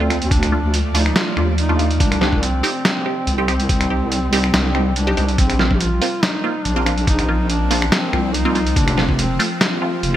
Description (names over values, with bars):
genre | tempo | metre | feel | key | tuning
deep dubstep | 142 BPM | 4/4 | swing 53% on 16ths, half-time | unclear | A4 = 439 Hz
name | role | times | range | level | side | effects
warm duduk | melody | 0.0-10.2 s | C4 to G4 | -24 LUFS | equal | dub echo
bowed-like drone | sustained chords | 0.0-10.2 s | C3 to D5 | -27 LUFS | right 1 dB | built-in reverb
filtered dub chord stab | stabs | 0.0-10.2 s | A3 to G4 | -24 LUFS | right 2 dB | phaser, dub echo
deep soft wobble bass | bass | 0.0-10.2 s | F1 to Eb2 | -19 LUFS | equal | chorus
trip hop sampler-style drum kit | drums | 0.1-10.1 s | finger snaps, hi-hat, snare drum | -21 LUFS | equal | none
electronic kick drum | drums | 0.3-9.2 s | none | -19 LUFS | equal | none
room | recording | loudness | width
light reverb | bright 1980s-style digital production, vinyl crackle | -15 LUFS | side -12 dB against mid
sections
0.0-10.2 A section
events
none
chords
0.0 Dm; 2.0 Cm; 5.4 Bbsus2; 8.8 F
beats
| 0.31 0.74 1.16 1.58 | 2.00 2.43 2.85 3.27 | 3.69 4.12 4.54 4.96 | 5.38 5.81 6.23 6.65 | 7.07 7.50 7.92 8.34 | 8.76 9.19 9.61 10.03